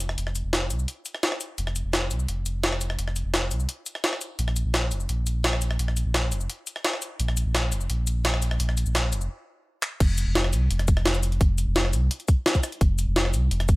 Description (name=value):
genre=liquid drum and bass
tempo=171 BPM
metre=4/4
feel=straight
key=unclear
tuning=A4 = 440 Hz
part: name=sub bass with octave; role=bass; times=0.0-13.8 s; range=F1 to C2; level=-24 LUFS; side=equal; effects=none
part: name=jungle sampler-style drum kit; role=drums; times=0.0-13.8 s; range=crash cymbal, handclaps, hi-hat, rim click, shaker, snare drum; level=-26 LUFS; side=equal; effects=high-pass filter on hats, high-pass filter on snare, high-pass filter on perc, high-pass filter on cymbals
part: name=electronic kick drum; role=drums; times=10.0-13.8 s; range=none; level=-20 LUFS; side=equal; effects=none
room=little or no reverb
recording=none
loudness=-23 LUFS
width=side -22 dB against mid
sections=0.0-10.0 A section; 10.0-13.8 B section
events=build-up 0.0-10.0; stop 9.3-10.0; drum fill 9.8; drop 10.0-13.8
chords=none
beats=| 0.18 0.53 0.88 1.23 | 1.58 1.93 2.28 2.63 | 2.99 3.34 3.69 4.04 | 4.39 4.74 5.09 5.44 | 5.79 6.14 6.50 6.85 | 7.20 7.55 7.90 8.25 | 8.60 8.95 9.30 9.65 | 10.00 10.35 10.71 11.06 | 11.41 11.76 12.11 12.46 | 12.81 13.16 13.51